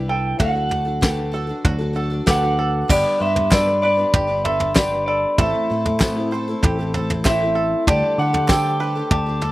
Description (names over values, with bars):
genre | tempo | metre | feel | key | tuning
indie folk with a building arrangement | 96 BPM | 4/4 | straight | G major | A4 = 441 Hz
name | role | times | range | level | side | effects
dark upright piano | accompaniment | 0.0-9.5 s | G1 to E5 | -31 LUFS | right 2 dB | slapback echo
picked twelve-string acoustic guitar | accompaniment | 0.0-9.5 s | G2 to B4 | -28 LUFS | left 3 dB | none
bluegrass banjo | arpeggios | 0.0-9.5 s | B3 to C5 | -31 LUFS | right 4 dB | slapback echo
fingered electric bass | bass | 0.0-9.5 s | G1 to D3 | -24 LUFS | equal | none
electric guitar through a small old amp | melody | 0.1-9.5 s | D5 to A5 | -20 LUFS | right 1 dB | harmonic tremolo, slapback echo
soft brush drum kit | drums | 0.4-9.5 s | crash cymbal, kick drum, snare drum, toms | -19 LUFS | equal | none
tambourine | percussion | 1.0-8.6 s | none | -36 LUFS | left 2 dB | none
glockenspiel with rubber mallets | second line | 2.3-9.5 s | A5 to D6 | -27 LUFS | left 2 dB | none
group handclap | percussion | 3.5-8.6 s | none | -29 LUFS | right 2 dB | none
room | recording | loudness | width
little or no reverb | recorded outdoors, with no room sound | -17 LUFS | side -17 dB against mid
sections
0.0-2.9 A section; 2.9-9.5 B section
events
none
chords
0.4 D; 2.9 G; 5.4 Am; 7.9 Dsus4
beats
| 0.40 1.02 1.65 2.27 | 2.89 3.52 4.14 4.76 | 5.38 6.00 6.63 7.25 | 7.87 8.49 9.11